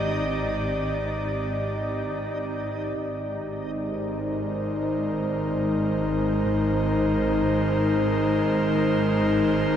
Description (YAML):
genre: ambient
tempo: free time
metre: none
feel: none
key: Ab lydian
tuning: A4 = 440 Hz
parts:
  - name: airy breathy pad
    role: sustained chords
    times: 0.0-9.8 s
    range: Ab3 to Eb5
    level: -24 LUFS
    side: equal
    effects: chorus
  - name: dark chamber double bass section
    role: bass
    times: 0.0-9.8 s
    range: Ab1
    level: -28 LUFS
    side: equal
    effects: none
  - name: backwards swelling texture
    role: texture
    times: 0.0-3.0 s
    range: Eb4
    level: -36 LUFS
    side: right 1 dB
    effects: built-in reverb
room: moderate huge ambient reverb, RT60 9.2 s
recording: none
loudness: -23 LUFS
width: side -9 dB against mid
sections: 0.0-3.0 A section; 3.0-9.8 B section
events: none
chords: 0.0 Cm/Ab; 3.0 Abmaj7